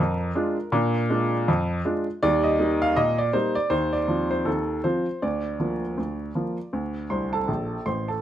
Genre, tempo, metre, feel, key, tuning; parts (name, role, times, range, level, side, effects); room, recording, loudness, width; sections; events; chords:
ragtime piano; 80 BPM; 2/4; swing 58% on 16ths; Bb major; A4 = 441 Hz
clear upright piano; solo; 0.0-8.2 s; A1 to C6; -22 LUFS; equal
light reverb; vinyl crackle; -22 LUFS; side -11 dB against mid
0.0-8.2 A section
upright piano fill 7.1-8.2
0.0 Bb7; 2.2 Eb; 3.7 F5/Eb; 5.2 Bb/D